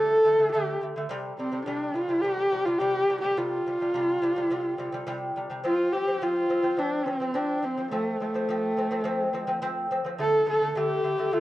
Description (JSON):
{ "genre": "mongolian traditional, Mongolian folk", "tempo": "105 BPM", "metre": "4/4", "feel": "straight", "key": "F gong mode", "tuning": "A4 = 439 Hz", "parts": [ { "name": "warm horsehead fiddle", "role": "melody", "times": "0.0-11.4 s", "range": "A3 to A4", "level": "-25 LUFS", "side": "equal", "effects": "none" }, { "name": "lute", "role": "arpeggios", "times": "0.0-11.4 s", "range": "C3 to C4", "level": "-30 LUFS", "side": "left 1 dB", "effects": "cassette tape" } ], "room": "wet spring reverb, RT60 1.7 s, small room reverb", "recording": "home recording on cassette", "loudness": "-24 LUFS", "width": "side -16 dB against mid", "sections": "0.0-5.7 A section; 5.7-11.4 B section", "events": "none", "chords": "0.0 D5; 1.1 C5; 5.7 F5; 10.2 D5" }